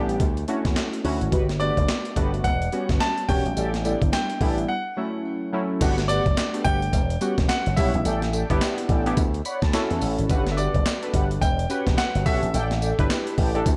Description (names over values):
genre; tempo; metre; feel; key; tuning
R&B, new jack swing; 107 BPM; 4/4; swing 61% on 16ths; unclear; A4 = 441 Hz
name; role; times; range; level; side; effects
warm analog keys; accompaniment; 0.0-13.7 s; F#3 to B5; -30 LUFS; equal; chorus
mellow synth brass; stabs; 0.0-13.5 s; D4 to G5; -34 LUFS; equal; chorus
slap bass with an envelope filter; bass; 0.0-13.8 s; E1 to E2; -28 LUFS; equal; none
breakbeat sampler-style drum kit; drums; 0.1-13.8 s; crash cymbal, handclaps, hi-hat, kick drum, snare drum, tambourine; -27 LUFS; equal; gated reverb
cowbell; percussion; 0.2-13.8 s; none; -44 LUFS; equal; none
clear concert grand piano; melody; 1.6-13.8 s; D5 to A5; -31 LUFS; equal; delay
room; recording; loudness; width
little or no reverb; none; -23 LUFS; mono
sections
0.0-5.8 A section; 5.8-13.8 B section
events
break 4.7-5.8; synth keys fill 9.2-10.3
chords
0.2 Dmaj7; 1.3 Gmaj7; 2.4 Em69; 3.6 A7sus4; 4.7 F#m7; 5.8 Gmaj7; 6.9 Em69; 8.1 A7sus4; 9.2 Dmaj7; 10.3 Gmaj7; 11.4 Em69; 12.5 A7sus4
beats
0.20 0.76 | 1.32 1.88 2.44 3.01 | 3.57 4.13 4.69 5.25 | 5.81 6.37 6.93 7.49 | 8.05 8.61 9.17 9.73 | 10.30 10.86 11.42 11.98 | 12.54 13.10 13.66